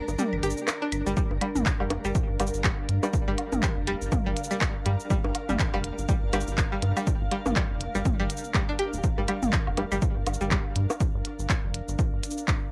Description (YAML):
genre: minimal techno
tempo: 122 BPM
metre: 4/4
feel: swing 58% on 16ths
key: G minor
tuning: A4 = 441 Hz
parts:
  - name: granular cloud pad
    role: texture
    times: 0.0-12.7 s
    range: D4 to Bb5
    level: -38 LUFS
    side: equal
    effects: built-in reverb, sidechain pumping
  - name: rubbery square bass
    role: bass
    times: 0.1-12.2 s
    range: D1 to G2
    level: -32 LUFS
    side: equal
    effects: tube saturation, sidechain pumping
  - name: minimal click drum kit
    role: drums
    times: 0.1-12.6 s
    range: cabasa, handclaps, hi-hat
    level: -34 LUFS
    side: equal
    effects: cassette tape
  - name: electronic bongos, toms, claves and woodblock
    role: percussion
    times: 0.1-11.0 s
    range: none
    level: -34 LUFS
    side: equal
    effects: overdrive, cassette tape, analog delay
  - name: string-like resonator pluck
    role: riff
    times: 0.2-10.5 s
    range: G3 to G4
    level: -34 LUFS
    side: equal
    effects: chorus, sidechain pumping, analog delay
  - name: electronic kick drum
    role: drums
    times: 1.2-12.6 s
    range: none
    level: -30 LUFS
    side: equal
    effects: cassette tape
room: light reverb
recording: home recording on cassette, lossy compression artefacts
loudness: -27 LUFS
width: mono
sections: 0.0-12.7 A section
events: break 0.0-1.2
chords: 0.0 Gm